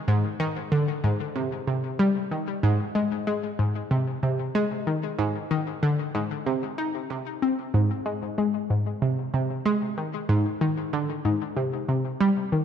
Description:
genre	ambient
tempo	94 BPM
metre	4/4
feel	straight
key	Ab lydian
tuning	A4 = 442 Hz
part	analog pluck	solo	0.1-12.6 s	Ab2 to Eb4	-24 LUFS	equal	chorus, ping-pong delay
room	wet concert hall reverb, RT60 2.2 s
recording	cassette tape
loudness	-24 LUFS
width	side -8 dB against mid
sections	0.0-7.7 A section; 7.7-12.6 B section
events	none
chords	none

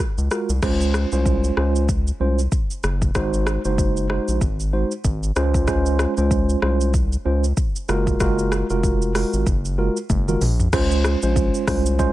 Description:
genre	afrobeats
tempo	95 BPM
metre	4/4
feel	swing 58% on 16ths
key	Db major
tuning	A4 = 440 Hz
part	round analog bass	bass	0.2-12.1 s	F1 to Db2	-21 LUFS	equal	none
part	afro-pop drum kit	drums	0.2-12.1 s	crash cymbal, hi-hat, kick drum, rim click, shaker, toms	-23 LUFS	equal	none
part	mellow tine electric piano	accompaniment	0.3-12.1 s	Ab3 to C5	-22 LUFS	right 2 dB	medium stereo tremolo
room	little or no reverb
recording	none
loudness	-18 LUFS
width	side -16 dB against mid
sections	0.6-10.7 A section; 10.7-12.1 B section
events	drum fill 10.1-10.7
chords	0.0 Gbmaj9; 0.6 Dbmaj7; 3.2 Ab7; 5.4 Dbmaj7; 7.9 Gbmaj9; 10.7 Dbmaj7

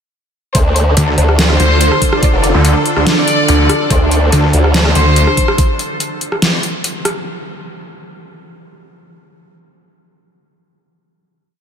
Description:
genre	heavy wobble dubstep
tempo	143 BPM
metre	4/4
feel	half-time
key	D minor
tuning	A4 = 441 Hz
part	clear studio violin section	melody	0.5-5.5 s	D4 to D5	-18 LUFS	left 1 dB	ping-pong delay
part	evolving wavetable pad	sustained chords	1.0-5.5 s	D3 to A4	-19 LUFS	right 1 dB	ensemble chorus, built-in reverb, vintage 12-bit sampler grit, sidechain pumping
part	formant-sweep wobble bass	bass	0.5-4.9 s	F1 to D2	-12 LUFS	equal	chorus, overdrive
part	dubstep drum kit	drums	0.5-7.1 s	hi-hat, rim click, snare drum	-17 LUFS	equal	overdrive
part	electronic kick drum	drums	0.5-5.7 s	none	-14 LUFS	equal	overdrive
part	snarling distorted saw bass	bass	1.0-5.3 s	D2	-12 LUFS	equal	distortion, overdrive
room	moderate cathedral reverb, RT60 4.9 s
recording	dreamy mix soaked in reverb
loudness	-10 LUFS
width	side -7 dB against mid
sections	0.5-7.3 drop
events	drop 0.5-7.3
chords	0.5 Dm

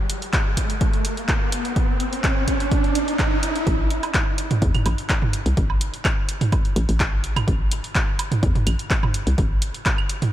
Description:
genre	minimal techno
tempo	126 BPM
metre	4/4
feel	straight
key	A minor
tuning	A4 = 441 Hz
part	riser	sound effects	0.0-3.7 s	none	-27 LUFS	right 2 dB	none
part	punchy analog drum machine	drums	0.1-10.3 s	handclaps, hi-hat	-27 LUFS	equal	studio reverb
part	electronic kick drum	drums	0.3-10.0 s	none	-22 LUFS	equal	studio reverb
part	hollow knocking FM bass	bass	3.7-9.7 s	G1 to E2	-22 LUFS	equal	sidechain pumping
part	electronic woodblock, toms and claves	percussion	4.0-10.3 s	none	-26 LUFS	right 2 dB	studio reverb, ping-pong delay
room	light reverb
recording	none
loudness	-19 LUFS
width	side -12 dB against mid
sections	0.0-3.7 A section; 3.7-10.3 B section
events	build-up 0.0-3.7; riser 0.0-3.7; drop 3.7-10.3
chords	none

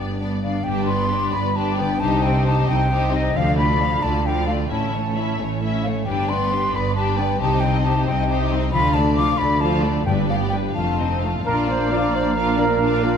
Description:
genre	cinematic, heroic adventure film score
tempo	89 BPM (dotted quarters)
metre	6/8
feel	straight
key	G mixolydian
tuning	A4 = 440 Hz
part	warm symphonic violin section	melody	0.0-13.2 s	B4 to F5	-31 LUFS	left 6 dB	none
part	warm symphonic violin section	second line	0.0-13.2 s	C#4 to B4	-29 LUFS	left 2 dB	none
part	warm symphonic viola section	accompaniment	0.0-13.2 s	F3 to Eb4	-28 LUFS	equal	none
part	concert harp	arpeggios	0.0-13.2 s	F2 to D5	-27 LUFS	left 7 dB	none
part	dark symphonic cello section	bass	0.0-13.2 s	F2 to D3	-26 LUFS	right 2 dB	none
part	rich symphonic double bass section	bass	0.0-13.2 s	F1 to D2	-25 LUFS	right 4 dB	none
part	mellow silver concert flute	second line	0.4-13.2 s	Eb5 to D6	-24 LUFS	left 2 dB	none
part	timpani	percussion	10.1-10.7 s	G2	-27 LUFS	left 1 dB	none
part	warm oboe	second line	11.4-13.2 s	F5	-28 LUFS	equal	none
part	mellow clarinet	second line	11.5-13.2 s	D4	-29 LUFS	left 1 dB	none
part	mellow trumpet section	stabs	11.5-13.2 s	F4 to D5	-23 LUFS	right 4 dB	none
part	mellow French horn section	sustained chords	11.9-12.7 s	Bb3 to D4	-30 LUFS	left 6 dB	none
part	warm trombone section	sustained chords	11.9-12.7 s	Bb2 to F3	-31 LUFS	right 3 dB	none
room	moderate scoring stage reverb, RT60 1.9 s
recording	none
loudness	-18 LUFS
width	side -7 dB against mid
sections	0.7-11.5 A section; 11.5-13.2 B section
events	none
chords	0.0 G; 2.0 Cm; 3.3 Dm; 4.7 A; 6.1 G; 7.4 Cm; 8.7 Dm; 10.1 G; 10.8 F7; 11.5 Bb

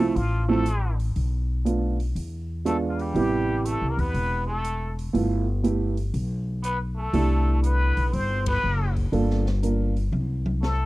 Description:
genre	jazz, small-group swing and bop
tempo	120 BPM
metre	4/4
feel	swing 67% on 8ths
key	unclear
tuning	A4 = 440 Hz
part	trumpet with plunger mute	melody	0.0-10.9 s	F4 to C5	-30 LUFS	left 2 dB	none
part	trombone with metal mute	second line	0.0-10.9 s	F3 to C4	-34 LUFS	right 1 dB	none
part	warm upright piano	accompaniment	0.0-9.9 s	C3 to Bb4	-25 LUFS	right 4 dB	none
part	upright bass	bass	0.0-10.9 s	E1 to E2	-25 LUFS	left 1 dB	none
part	open jazz drum kit	drums	0.0-10.8 s	hi-hat, kick drum, ride cymbal, snare drum, toms	-35 LUFS	equal	none
room	small room ambience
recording	dry, close 1970s-style studio recording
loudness	-22 LUFS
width	side -18 dB against mid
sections	0.0-10.9 A section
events	band accent 8.4; drum fill 10.1-10.9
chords	0.0 Dm9 (rootless); 1.2 Bm7b5; 2.1 E7b9; 3.1 Am9; 5.1 G13; 7.1 C69; 9.1 Gm7; 10.1 N.C.

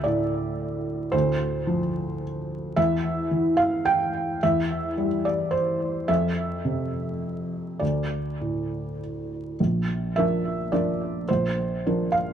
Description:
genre	neoclassical minimalist piano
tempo	107 BPM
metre	3/4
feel	rubato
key	unclear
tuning	A4 = 440 Hz
part	felt-muted upright piano	solo	0.0-12.3 s	Bb1 to G5	-23 LUFS	right 1 dB	tape echo
room	moderate spring reverb, RT60 1.3 s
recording	vinyl crackle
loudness	-23 LUFS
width	side -9 dB against mid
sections	0.0-9.6 A section; 9.6-12.3 B section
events	none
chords	0.0 Dm7; 2.8 C/E; 6.1 F5; 7.8 D5; 9.6 Bb

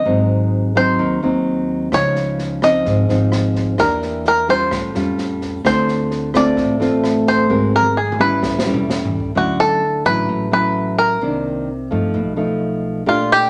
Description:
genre	bossa nova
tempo	129 BPM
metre	4/4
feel	straight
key	unclear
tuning	A4 = 440 Hz
part	bluegrass banjo	melody	0.0-13.5 s	F4 to Eb5	-20 LUFS	equal	none
part	nylon-string guitar	accompaniment	0.0-13.5 s	Ab2 to Bb4	-21 LUFS	equal	none
part	upright bass	bass	0.1-13.5 s	Ab1 to G2	-26 LUFS	equal	none
part	open jazz drum kit	drums	1.9-9.3 s	kick drum, rim click, snare drum, toms	-29 LUFS	equal	none
room	moderate large studio reverb, RT60 1.0 s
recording	none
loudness	-17 LUFS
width	mono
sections	0.0-9.4 A section; 9.4-13.5 B section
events	drum fill 7.5-9.4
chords	0.1 Ab7; 1.9 Dbmaj9; 3.8 Em7b5; 4.7 A7alt; 5.6 Dm7; 7.5 Ab9; 8.4 A7; 9.4 Dmaj9; 11.2 Cm9; 12.1 B7#11

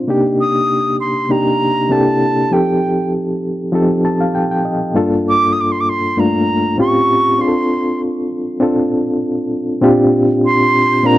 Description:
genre	soul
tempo	98 BPM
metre	4/4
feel	swing 54% on 16ths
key	C dorian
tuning	A4 = 440 Hz
part	reed electric piano	accompaniment	0.0-11.2 s	G2 to A5	-14 LUFS	equal	fast tremolo
part	reedy silver concert flute	melody	0.4-11.2 s	G5 to Eb6	-16 LUFS	right 1 dB	none
room	small room ambience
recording	dry, close 1970s-style studio recording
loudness	-13 LUFS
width	side -15 dB against mid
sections	0.0-9.8 A section; 9.8-11.2 B section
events	reed electric piano fill 3.7-5.0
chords	0.1 Cm9; 1.9 C13; 2.5 F9; 5.0 Gm9; 6.8 A7alt; 7.4 Dm7; 9.8 Bb6

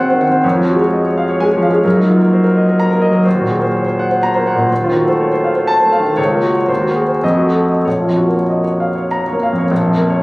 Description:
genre	classical, romantic character piece for solo piano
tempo	90-134 BPM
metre	3/4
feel	rubato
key	Bb minor from 3.3 s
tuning	A4 = 439 Hz
part	clear grand piano	solo	0.0-10.2 s	Bb1 to Bb5	-12 LUFS	equal	none
room	moderate recital hall reverb, RT60 1.6 s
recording	recorded on a phone in the room, club reverb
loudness	-12 LUFS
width	side -22 dB against mid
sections	0.0-9.7 A section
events	none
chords	0.4 Db/F; 1.9 Ebm/Gb; 3.3 Cm7b5/Eb; 4.7 F7/Eb; 6.2 Bbm/Db; 6.7 Cm7b5/Eb; 7.2 F7b9; 7.8 Bbm

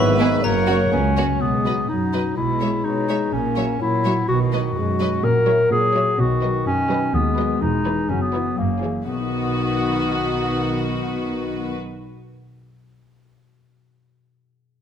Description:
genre	cinematic, playful, whimsical film cue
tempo	125 BPM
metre	2/4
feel	straight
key	B major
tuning	A4 = 441 Hz
part	rich studio violin section	melody	0.0-11.7 s	A#4 to E5	-35 LUFS	left 2 dB	none
part	xylophone with wooden mallets	melody	0.0-0.9 s	A#5 to B5	-29 LUFS	left 2 dB	none
part	clear oboe	second line	0.0-1.2 s	E5 to F#5	-29 LUFS	left 1 dB	none
part	mellow hollow concert flute	second line	0.0-0.9 s	A#4 to B4	-29 LUFS	left 1 dB	none
part	warm clarinet	second line	0.0-11.7 s	A#3 to C#5	-22 LUFS	left 1 dB	none
part	warm bassoon	accompaniment	0.0-1.2 s	C#3 to E3	-26 LUFS	right 3 dB	none
part	mellow French horn section	sustained chords	0.0-11.7 s	D#3 to D#4	-28 LUFS	left 4 dB	none
part	concert harp	arpeggios	0.0-13.0 s	F#2 to C#6	-27 LUFS	left 9 dB	none
part	clear tuba	bass	0.0-1.3 s	F#1 to C#2	-29 LUFS	right 5 dB	none
part	dark studio double bass section	bass	0.0-11.7 s	E1 to D#2	-28 LUFS	right 4 dB	none
part	warm studio cello section	bass	0.0-11.7 s	C#2 to B2	-26 LUFS	right 3 dB	none
part	rich studio violin section	second line	0.2-11.7 s	E4 to C#5	-29 LUFS	left 1 dB	none
part	dark studio viola section	accompaniment	0.2-11.7 s	D#3 to C#4	-28 LUFS	right 1 dB	none
room	moderate scoring stage reverb, RT60 1.5 s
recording	close, detailed microphones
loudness	-18 LUFS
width	side -8 dB against mid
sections	0.0-1.4 A section; 1.4-9.1 B section; 9.1-11.0 C section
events	none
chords	0.4 F#; 1.4 B; 2.4 C#m7/B; 3.3 F#7/A#; 4.3 B; 5.2 F#7/A#; 6.2 B; 7.1 B/D#; 7.6 C#m7/E; 8.1 F#7sus4; 8.6 F#9; 9.1 B

